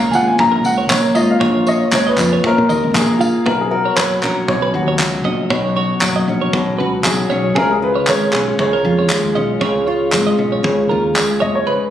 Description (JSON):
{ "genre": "acoustic pop", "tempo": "117 BPM", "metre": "4/4", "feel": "swing 55% on 16ths", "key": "unclear", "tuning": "A4 = 440 Hz", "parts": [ { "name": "warm upright piano", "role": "melody", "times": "0.0-11.9 s", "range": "G#4 to A#5", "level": "-18 LUFS", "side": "left 1 dB", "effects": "none" }, { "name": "picked steel-string acoustic guitar", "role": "accompaniment", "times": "0.0-11.9 s", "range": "G#2 to A#4", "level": "-17 LUFS", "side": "left 1 dB", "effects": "none" }, { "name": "twelve-string electric guitar", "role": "arpeggios", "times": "0.0-11.8 s", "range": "G#4 to E#5", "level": "-22 LUFS", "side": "right 3 dB", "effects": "none" }, { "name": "woody fretless electric bass", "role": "bass", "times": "0.0-11.6 s", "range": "F#1 to A#2", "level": "-22 LUFS", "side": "right 1 dB", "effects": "none" }, { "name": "modern studio drum kit", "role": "drums", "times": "0.1-11.3 s", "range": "handclaps, kick drum, tambourine", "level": "-21 LUFS", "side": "equal", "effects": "none" }, { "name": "tambourine", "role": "percussion", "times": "0.9-11.3 s", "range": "none", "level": "-26 LUFS", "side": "left 2 dB", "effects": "none" } ], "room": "light reverb", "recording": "recorded on a phone in the room, studio reverb", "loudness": "-13 LUFS", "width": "side -10 dB against mid", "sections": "0.0-3.5 A section; 3.5-11.7 B section", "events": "none", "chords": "0.0 G#sus4; 3.5 Bsus2; 7.6 C#", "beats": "0.39 0.90 | 1.41 1.92 2.43 2.94 | 3.46 3.97 4.48 4.99 | 5.50 6.02 6.53 7.04 | 7.56 8.07 8.59 9.10 | 9.62 10.13 10.64 11.16 | 11.68" }